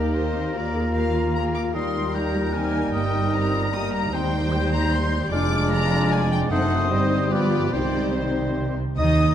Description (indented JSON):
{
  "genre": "quick classical-period movement for symphony orchestra",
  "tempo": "150 BPM",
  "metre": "3/4",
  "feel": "straight",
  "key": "Eb major, C minor from 4.1 s",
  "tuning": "A4 = 440 Hz",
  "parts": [
    { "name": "warm studio violin section", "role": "melody", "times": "0.0-9.3 s", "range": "C5 to Eb6", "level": "-31 LUFS", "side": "left 5 dB", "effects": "none" },
    { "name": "clear oboe", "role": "second line", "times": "0.0-9.3 s", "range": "Bb4 to Eb5", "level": "-33 LUFS", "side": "right 1 dB", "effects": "none" },
    { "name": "silver concert flute", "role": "second line", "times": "0.0-9.3 s", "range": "Bb5 to G6", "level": "-32 LUFS", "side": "left 3 dB", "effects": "none" },
    { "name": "warm clarinet", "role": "second line", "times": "0.0-9.3 s", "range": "D4 to Eb5", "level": "-30 LUFS", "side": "left 2 dB", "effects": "none" },
    { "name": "warm studio violin section", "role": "second line", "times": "0.0-9.3 s", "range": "Eb4 to Eb5", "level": "-32 LUFS", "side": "left 4 dB", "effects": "none" },
    { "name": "warm bassoon", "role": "accompaniment", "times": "0.0-9.3 s", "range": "G3 to Eb4", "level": "-30 LUFS", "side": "right 1 dB", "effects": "none" },
    { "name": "warm studio viola section", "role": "accompaniment", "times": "0.0-9.3 s", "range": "G3 to Ab4", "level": "-31 LUFS", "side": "right 1 dB", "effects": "none" },
    { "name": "mellow French horn section", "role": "sustained chords", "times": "0.0-9.3 s", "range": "Eb3 to F4", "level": "-30 LUFS", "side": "left 3 dB", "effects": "none" },
    { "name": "rich studio double bass section", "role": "bass", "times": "0.0-9.3 s", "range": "F1 to Eb2", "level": "-26 LUFS", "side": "right 2 dB", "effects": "none" },
    { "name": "warm studio cello section", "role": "bass", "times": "0.0-9.3 s", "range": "Eb2 to Eb3", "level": "-27 LUFS", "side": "right 3 dB", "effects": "none" }
  ],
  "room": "moderate concert hall reverb, RT60 1.9 s",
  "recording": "dark, warm production",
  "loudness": "-20 LUFS",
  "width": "side -10 dB against mid",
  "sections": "0.0-9.0 A section",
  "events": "none",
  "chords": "0.0 Eb; 0.5 Bb/Eb; 1.7 Eb; 2.9 Eb/G; 4.1 Cm/Eb; 5.3 Ddim/F; 6.5 F#dim7; 6.9 Cm/G; 7.3 G7; 7.7 Cm"
}